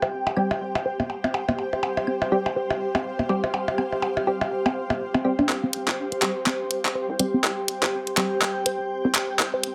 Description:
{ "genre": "minimal techno", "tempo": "123 BPM", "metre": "4/4", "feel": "swing 59% on 16ths", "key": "unclear", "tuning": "A4 = 440 Hz", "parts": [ { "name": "resonant blip pluck", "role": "riff", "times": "0.0-9.6 s", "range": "C4 to C5", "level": "-30 LUFS", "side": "equal", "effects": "phaser, digital delay" }, { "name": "percussion blips and claves", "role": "percussion", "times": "0.0-5.5 s", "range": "none", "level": "-29 LUFS", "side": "equal", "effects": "small room ambience" }, { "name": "granular cloud pad", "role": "texture", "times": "0.0-9.7 s", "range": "G4 to G5", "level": "-30 LUFS", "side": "equal", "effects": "built-in reverb" }, { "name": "wavetable chord stab", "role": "stabs", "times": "0.4-8.3 s", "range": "G3 to G4", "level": "-29 LUFS", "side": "equal", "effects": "cassette tape, tape echo" }, { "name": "hollow knocking FM bass", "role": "bass", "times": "5.5-9.5 s", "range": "G1 to C2", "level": "-35 LUFS", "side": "equal", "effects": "tube saturation, high-pass filter" }, { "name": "garage drum kit", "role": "drums", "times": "5.5-9.7 s", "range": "handclaps, hi-hat", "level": "-26 LUFS", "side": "equal", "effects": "overdrive, low-pass filter on hats, small room ambience, low-pass filter on snare" } ], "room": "moderate plate reverb, RT60 1.3 s, digital ambience", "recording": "none", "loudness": "-25 LUFS", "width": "mono", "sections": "0.0-5.5 A section; 5.5-9.7 B section", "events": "build-up 5.5-9.7; drum fill 5.5-9.7; filter sweep on synth pluck 5.5-9.7; filter sweep on synth stab 5.5-9.7", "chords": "0.0 C5" }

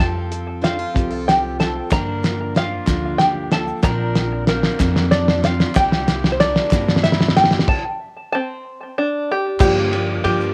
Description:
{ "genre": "indie folk with a building arrangement", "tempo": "62 BPM (dotted quarters)", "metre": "6/8", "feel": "straight", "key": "G minor", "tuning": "A4 = 439 Hz", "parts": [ { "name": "open-back banjo", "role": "melody", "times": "0.0-10.5 s", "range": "C4 to Bb5", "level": "-23 LUFS", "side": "equal", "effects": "cassette tape, analog delay" }, { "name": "fingerpicked plugged-in steel-string acoustic guitar", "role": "accompaniment", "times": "0.0-3.8 s", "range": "F3 to A4", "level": "-35 LUFS", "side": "equal", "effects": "cassette tape" }, { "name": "picked steel-string acoustic guitar", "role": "accompaniment", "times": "0.0-10.5 s", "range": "G2 to Bb4", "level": "-28 LUFS", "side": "equal", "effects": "cassette tape" }, { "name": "upright bass", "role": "bass", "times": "0.0-10.5 s", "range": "Bb1 to G2", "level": "-28 LUFS", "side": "equal", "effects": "none" }, { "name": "cloth-damped thuddy drum kit", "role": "drums", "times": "0.0-10.4 s", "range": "crash cymbal, hi-hat, kick drum, ride cymbal, snare drum", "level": "-21 LUFS", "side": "equal", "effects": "cassette tape" }, { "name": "mellow trumpet", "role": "second line", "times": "0.6-7.7 s", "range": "Bb3 to Bb4", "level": "-32 LUFS", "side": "equal", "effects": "cassette tape" }, { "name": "group handclap", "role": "percussion", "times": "1.9-9.7 s", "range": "none", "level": "-35 LUFS", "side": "equal", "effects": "none" }, { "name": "tube shaker", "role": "percussion", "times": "1.9-10.5 s", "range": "none", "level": "-45 LUFS", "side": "equal", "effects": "none" }, { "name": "warm upright piano", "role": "accompaniment", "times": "9.6-10.5 s", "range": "G1 to D5", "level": "-30 LUFS", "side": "equal", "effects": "none" }, { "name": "tonewheel organ", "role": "sustained chords", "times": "9.6-10.5 s", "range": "Bb4 to D6", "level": "-37 LUFS", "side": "equal", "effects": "none" } ], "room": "little or no reverb", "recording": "home recording on cassette", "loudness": "-18 LUFS", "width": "mono", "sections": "0.0-9.6 A section", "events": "build-up 0.0-9.6; drum fill 0.0-7.7; stop 7.7-9.6", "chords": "0.0 F; 1.9 Gm7; 3.8 Bbadd9; 5.8 C7; 7.7 N.C.; 9.6 Gm7" }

